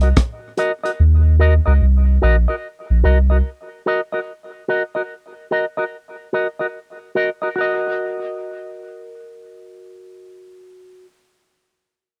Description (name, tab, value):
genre	dub reggae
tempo	73 BPM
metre	4/4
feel	swing 64% on 16ths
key	Eb dorian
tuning	A4 = 440 Hz
part	electric guitar with an envelope filter	accompaniment	0.0-11.1 s	Gb4 to Eb5	-24 LUFS	equal	tape echo
part	soft dub sub bass	bass	0.0-3.4 s	Bb1 to Eb2	-15 LUFS	equal	none
part	crunchy breakbeat drum kit	drums	0.0-1.0 s	hi-hat, kick drum, rim click	-18 LUFS	equal	none
room	little or no reverb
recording	dry, close 1970s-style studio recording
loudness	-19 LUFS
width	mono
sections	0.0-7.6 A section; 7.6-10.9 B section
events	none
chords	0.0 Ebm